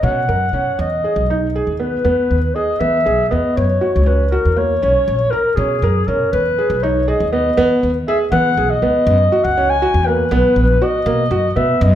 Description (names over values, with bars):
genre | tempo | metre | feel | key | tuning
contemporary instrumental, chamber music in an uneven meter | 240 BPM (eighths) | 11/8 | straight | E lydian | A4 = 441 Hz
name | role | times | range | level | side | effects
breathy clarinet | melody | 0.0-11.9 s | G#4 to G#5 | -17 LUFS | left 2 dB | none
felt-muted upright piano | arpeggios | 0.0-11.9 s | A#3 to A#4 | -19 LUFS | right 2 dB | none
upright bass | bass | 0.0-11.9 s | A#1 to E3 | -18 LUFS | equal | none
room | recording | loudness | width
wet recital hall reverb, RT60 1.7 s | minimal, uncompressed stereo recording | -13 LUFS | side -11 dB against mid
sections
0.0-11.9 A section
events
none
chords
0.0 Bsus2; 0.8 Emaj7; 3.6 F#7; 4.8 Bsus2; 6.3 Emaj7; 9.1 F#7; 10.3 Bmaj7